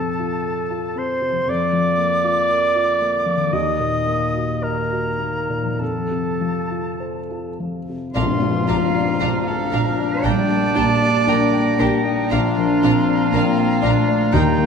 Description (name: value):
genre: cinematic, emotional film score for orchestra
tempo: 49-61 BPM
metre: 4/4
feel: rubato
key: Bb major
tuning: A4 = 438 Hz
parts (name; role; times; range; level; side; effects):
- silver concert flute; second line; 0.0-14.7 s; G5 to Eb6; -27 LUFS; left 1 dB; none
- warm clarinet; second line; 0.0-14.7 s; C4 to Eb5; -24 LUFS; right 1 dB; none
- felt-muted upright piano; accompaniment; 0.0-14.7 s; Bb1 to G5; -24 LUFS; left 1 dB; none
- concert harp; arpeggios; 0.0-14.7 s; Bb2 to G5; -26 LUFS; left 10 dB; none
- rich cello; melody; 8.1-14.7 s; Eb4 to D5; -24 LUFS; right 4 dB; none
- rich studio viola section; accompaniment; 8.1-14.4 s; D4 to Eb4; -29 LUFS; right 2 dB; none
- dark French horn section; sustained chords; 8.1-14.7 s; F3 to Eb4; -24 LUFS; left 5 dB; none
- warm studio violin section; melody; 8.2-14.4 s; Bb5; -35 LUFS; left 2 dB; none
- bright oboe; second line; 8.2-14.7 s; F5 to Bb5; -28 LUFS; right 1 dB; none
- rich studio violin section; second line; 8.2-14.4 s; F5 to G5; -33 LUFS; left 2 dB; none
- dark studio double bass section; bass; 8.2-14.4 s; Bb1 to Eb2; -25 LUFS; right 6 dB; none
- tam-tam; percussion; 8.2-12.3 s; none; -30 LUFS; left 1 dB; none
- dark studio cello section; bass; 10.2-14.7 s; G3 to D4; -23 LUFS; right 2 dB; none
room: wet scoring stage reverb, RT60 1.6 s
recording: minimal, uncompressed stereo recording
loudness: -17 LUFS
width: side -6 dB against mid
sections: 0.0-8.2 A section; 8.2-14.7 A section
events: band accent 8.2-9.2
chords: 0.0 F; 1.5 Bb/F; 3.5 Ebm; 5.8 F; 8.2 Bb; 10.2 Gm/Bb; 12.3 Bb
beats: 0.46 1.49 2.51 | 3.54 4.64 5.81 7.00 | 8.15 9.21 10.24 11.27 | 12.31 13.33 14.33